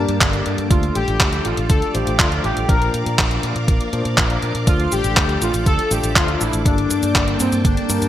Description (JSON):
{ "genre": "italo disco", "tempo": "121 BPM", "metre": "4/4", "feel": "straight", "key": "D minor", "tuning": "A4 = 440 Hz", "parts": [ { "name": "analog synth brass", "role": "melody", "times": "0.0-8.1 s", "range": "C4 to Bb4", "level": "-23 LUFS", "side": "left 2 dB", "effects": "chorus, digital delay" }, { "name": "string machine, full ensemble", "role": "sustained chords", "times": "0.0-8.1 s", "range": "Bb3 to D6", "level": "-26 LUFS", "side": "right 1 dB", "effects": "ensemble chorus" }, { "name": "overdriven tine electric piano", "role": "stabs", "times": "0.0-8.1 s", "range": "F3 to C5", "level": "-26 LUFS", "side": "left 3 dB", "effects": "fast tremolo" }, { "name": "fingered electric bass with an envelope filter", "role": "bass", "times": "0.0-8.1 s", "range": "G1 to Bb2", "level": "-22 LUFS", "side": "equal", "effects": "tube saturation" }, { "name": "detuned 8-bit digital drum machine", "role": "drums", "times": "0.1-8.1 s", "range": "cabasa, handclaps, hi-hat", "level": "-20 LUFS", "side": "equal", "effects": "overdrive, gated reverb" }, { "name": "electronic kick drum", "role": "drums", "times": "0.2-7.7 s", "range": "none", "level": "-18 LUFS", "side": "equal", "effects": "overdrive" } ], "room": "moderate plate reverb, RT60 2.3 s", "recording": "bright 1980s-style digital production", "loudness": "-15 LUFS", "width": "side -12 dB against mid", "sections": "0.0-8.1 A section", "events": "none", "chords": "0.0 Gmadd9; 0.7 Dm; 2.7 Bb; 4.7 Dm; 6.7 Gmadd9" }